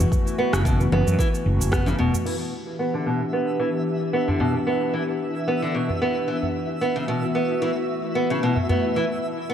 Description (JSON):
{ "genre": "organic downtempo", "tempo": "112 BPM", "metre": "4/4", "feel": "swing 54% on 16ths", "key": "E minor", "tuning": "A4 = 440 Hz", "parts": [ { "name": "warbly tape-like pad", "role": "sustained chords", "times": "0.0-9.5 s", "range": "E3 to G4", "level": "-28 LUFS", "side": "left 1 dB", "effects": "chorus, built-in reverb, phaser, sidechain pumping" }, { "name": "fretless electric bass", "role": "bass", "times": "0.0-2.1 s", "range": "E1 to F#2", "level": "-22 LUFS", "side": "equal", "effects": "sidechain pumping" }, { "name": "organic electronic drum kit", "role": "drums", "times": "0.0-2.4 s", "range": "cabasa, congas, crash cymbal, rim click", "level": "-29 LUFS", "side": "equal", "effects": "studio reverb" }, { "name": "udu", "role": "percussion", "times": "0.0-8.8 s", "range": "none", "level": "-28 LUFS", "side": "equal", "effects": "none" }, { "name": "electronic kick drum", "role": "drums", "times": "0.1-1.8 s", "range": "none", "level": "-23 LUFS", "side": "equal", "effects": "studio reverb" }, { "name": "nylon-string guitar", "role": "arpeggios", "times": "0.4-9.5 s", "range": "B2 to B3", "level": "-24 LUFS", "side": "equal", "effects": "low-pass filter, tape echo" }, { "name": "twinkling granular texture", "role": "texture", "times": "2.9-9.5 s", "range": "E4 to E5", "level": "-32 LUFS", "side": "equal", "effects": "built-in reverb" } ], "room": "moderate concert hall reverb, RT60 1.9 s", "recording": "none", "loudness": "-21 LUFS", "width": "side -9 dB against mid", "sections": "0.0-2.3 A section; 2.3-9.5 B section", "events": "filter sweep on nylon-string guitar 2.3-9.5", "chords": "0.0 F#m7; 2.3 Em7; 6.5 F#m7", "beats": "| 0.12 0.65 1.19 1.73 | 2.26 2.80 3.33 3.87 | 4.40 4.94 5.48 6.01 | 6.55 7.08 7.62 8.15 | 8.69 9.23" }